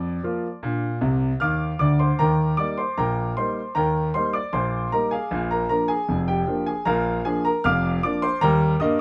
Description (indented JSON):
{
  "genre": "ragtime piano",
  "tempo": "77 BPM",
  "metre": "2/4",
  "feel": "straight",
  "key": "Eb major",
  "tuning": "A4 = 441 Hz",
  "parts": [
    { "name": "clear concert grand piano", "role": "solo", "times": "0.0-9.0 s", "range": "F1 to F6", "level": "-23 LUFS", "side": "equal", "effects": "none" }
  ],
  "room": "light reverb",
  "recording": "none",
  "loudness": "-23 LUFS",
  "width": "mono",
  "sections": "0.0-2.2 A section; 2.2-9.0 B section",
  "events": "grand piano fill 1.0-2.2",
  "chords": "0.0 Bb; 2.2 Eb; 5.3 Bb7; 8.4 Eb",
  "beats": "| 0.63 1.41 | 2.19 2.97 | 3.75 4.53 | 5.31 6.08 | 6.86 7.63 | 8.41"
}